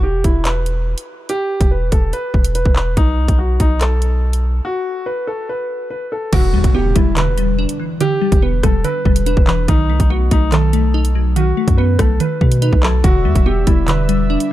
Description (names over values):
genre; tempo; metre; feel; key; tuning
hip hop, drill; 143 BPM; 4/4; half-time; E minor; A4 = 440 Hz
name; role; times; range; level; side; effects
warm concert grand piano; melody; 0.0-14.5 s; D#4 to B4; -21 LUFS; left 1 dB; digital delay
long sustained 808-style bass; bass; 0.0-14.4 s; E1 to B2; -16 LUFS; equal; none
drill drum kit; drums; 0.2-14.5 s; crash cymbal, handclaps, hi-hat, kick drum, rim click; -16 LUFS; equal; none
glassy wavetable pluck; accompaniment; 6.3-14.5 s; D3 to D#4; -19 LUFS; equal; chorus
impact; sound effects; 6.3-8.0 s; none; -25 LUFS; equal; none
warm analog pad; sustained chords; 13.0-14.5 s; D5 to E6; -28 LUFS; right 4 dB; chorus
room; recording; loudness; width
digital ambience; dark, warm production; -13 LUFS; side -14 dB against mid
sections
0.0-6.3 A section; 6.3-14.5 B section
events
break 4.6-6.3; impact 6.3-8.0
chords
0.0 E5; 3.0 B7(no3); 6.3 Em7; 9.7 B7; 13.0 Em7